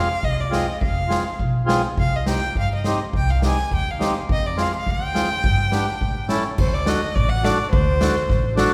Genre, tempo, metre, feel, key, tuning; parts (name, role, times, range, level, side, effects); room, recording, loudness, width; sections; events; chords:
klezmer; 104 BPM; 2/4; straight; A4 = 440 Hz
rich violin; melody; 0.0-8.5 s; C5 to Ab5; -28 LUFS; equal
accordion; accompaniment; 0.0-8.7 s; B3 to A4; -27 LUFS; equal
upright bass; bass; 0.2-8.6 s; F1 to A2; -26 LUFS; equal
street-band drum kit; drums; 0.2-8.7 s; crash cymbal, kick drum, snare drum; -26 LUFS; equal
moderate concert hall reverb, RT60 2.3 s; recorded in a church or concert hall; -21 LUFS; mono
0.0-6.6 A section; 6.6-8.7 B section
0.0 Fm; 2.0 Cm; 4.3 Fm; 5.4 G; 6.0 A7; 6.6 D